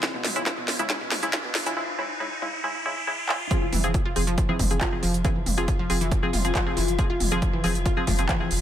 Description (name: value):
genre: driving peak-time techno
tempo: 138 BPM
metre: 4/4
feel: straight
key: F harmonic minor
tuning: A4 = 440 Hz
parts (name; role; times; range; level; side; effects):
- wavetable chord stab; stabs; 0.0-8.5 s; Db3 to Ab4; -29 LUFS; equal; sidechain pumping, digital delay
- metallic inharmonic drone; drone; 0.0-8.6 s; F3 to F4; -35 LUFS; left 6 dB; chorus, built-in reverb, phaser, sidechain pumping
- electronic kick drum; drums; 0.0-8.4 s; none; -26 LUFS; equal; high-pass filter on kick, high-pass filter on room
- techno drum kit; drums; 0.0-8.6 s; handclaps, hi-hat, snare drum, toms; -28 LUFS; equal; sidechain pumping on hats, sidechain pumping on toms
- riser; sound effects; 0.0-3.5 s; none; -33 LUFS; equal; none
- wide unison pluck; riff; 0.1-8.3 s; B2 to F4; -31 LUFS; equal; cassette tape, sidechain pumping, digital delay
- warm sub bass; bass; 3.6-8.6 s; F1; -28 LUFS; equal; overdrive, sidechain pumping, low-pass filter
room: light reverb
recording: high-pass filter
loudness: -22 LUFS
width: side -11 dB against mid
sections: 0.0-3.5 A section; 3.5-8.6 B section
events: build-up 0.0-3.5; drum fill 0.0-1.8, 3.3; riser 0.0-3.5; filter sweep on synth arpeggio sound 0.0-3.5; break 1.8-3.5; drop 3.5-8.6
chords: 0.0 Dbm; 3.5 Fm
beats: | 0.03 0.46 0.90 1.33 | 1.77 2.20 2.64 3.07 | 3.51 3.94 4.38 4.81 | 5.25 5.68 6.12 6.55 | 6.99 7.42 7.86 8.29